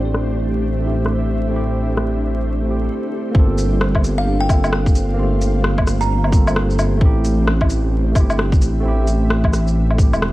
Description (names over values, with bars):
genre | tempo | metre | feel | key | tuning
future garage | 131 BPM | 4/4 | swing 62% on 16ths | G dorian | A4 = 440 Hz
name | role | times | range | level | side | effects
tine electric piano | accompaniment | 0.0-10.3 s | A3 to A4 | -23 LUFS | right 2 dB | sidechain pumping, tape echo
ethereal airy pad | sustained chords | 0.0-10.3 s | D4 to F5 | -28 LUFS | equal | ensemble chorus, built-in reverb, tremolo, sidechain pumping
dark detuned saw bass | bass | 0.0-10.3 s | E1 to A1 | -18 LUFS | equal | sidechain pumping
backwards swelling texture | texture | 0.1-2.9 s | A3 | -33 LUFS | equal | none
organic electronic drum kit | drums | 0.1-10.3 s | hi-hat, rim click, shaker, woodblock | -22 LUFS | left 1 dB | low-pass filter on snare, small room ambience, low-pass filter on hats, low-pass filter on perc
electronic kick drum | drums | 3.3-10.1 s | none | -15 LUFS | equal | small room ambience
kalimba | melody | 4.2-6.5 s | F5 to Bb5 | -28 LUFS | right 1 dB | vintage 12-bit sampler grit, tape echo
room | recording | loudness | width
light reverb | vinyl crackle | -15 LUFS | side -17 dB against mid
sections
0.0-3.3 A section; 3.3-10.3 B section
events
break 2.9-3.3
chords
0.0 Am7; 3.3 Gm11; 7.0 Am7